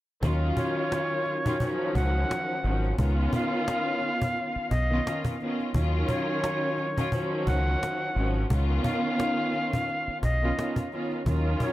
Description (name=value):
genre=hip hop, boom-bap hip-hop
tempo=87 BPM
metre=4/4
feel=swing 56% on 16ths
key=Eb minor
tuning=A4 = 440 Hz
part: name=clear studio string section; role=accompaniment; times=0.2-11.7 s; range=Eb3 to F4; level=-29 LUFS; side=equal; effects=high-pass filter, low-pass filter
part: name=deep dub fingered electric bass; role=bass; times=0.2-11.5 s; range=Ab1 to Eb2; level=-25 LUFS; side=equal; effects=none
part: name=cajon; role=drums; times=0.2-11.7 s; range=none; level=-31 LUFS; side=equal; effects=none
part: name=breathy bright jazz flute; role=melody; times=0.6-11.7 s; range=Db5 to Gb5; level=-31 LUFS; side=equal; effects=high-pass filter, low-pass filter, ping-pong delay
room=small room reverb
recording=none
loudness=-25 LUFS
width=side -15 dB against mid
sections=0.2-11.7 A section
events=none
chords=0.2 Ebm9; 3.0 Db9; 5.7 Ebm9; 8.5 Db9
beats=| 0.23 0.92 1.61 2.30 | 2.98 3.67 4.37 5.05 | 5.74 6.43 7.12 7.81 | 8.50 9.19 9.88 10.57 | 11.26